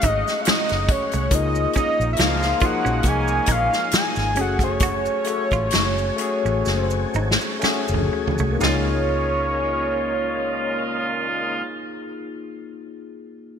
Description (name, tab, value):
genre	R&B, neo-soul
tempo	60-70 BPM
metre	4/4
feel	swing 54% on 16ths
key	Db major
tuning	A4 = 440 Hz
part	fat analog lead	melody	0.0-11.7 s	Db5 to Ab5	-24 LUFS	equal	phaser, ping-pong delay
part	clean electric guitar	second line	0.0-8.9 s	Ab3 to Gb4	-32 LUFS	right 8 dB	tremolo
part	barky tine electric piano	accompaniment	0.0-13.6 s	F3 to A4	-28 LUFS	left 6 dB	overdrive, phaser
part	tonewheel organ	sustained chords	0.0-11.6 s	Db3 to Db5	-32 LUFS	equal	slow rotary speaker, chorus vibrato
part	vintage muted fingered electric bass	bass	0.0-11.6 s	Gb1 to Db2	-25 LUFS	equal	none
part	unplugged drum kit	drums	0.0-8.9 s	hi-hat, kick drum, snare drum, toms	-22 LUFS	equal	gated reverb
part	maracas and finger snaps	percussion	0.0-9.1 s	none	-36 LUFS	right 9 dB	none
part	warm horn section	stabs	1.7-11.6 s	Bb2 to F4	-28 LUFS	right 2 dB	none
room	moderate lush hall reverb, RT60 3.0 s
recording	bright 1980s-style digital production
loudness	-19 LUFS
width	side -7 dB against mid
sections	0.0-8.6 A section; 8.6-12.6 B section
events	slowing down 1.3-8.6; drum fill 6.7-8.6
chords	0.0 Gbmadd9; 1.3 Db69; 4.4 Gbmadd9; 8.6 Db69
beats	0.46 | 1.31 2.17 3.04 3.92 | 4.81 5.72 6.66 7.62 | 8.61 9.62 10.63 11.64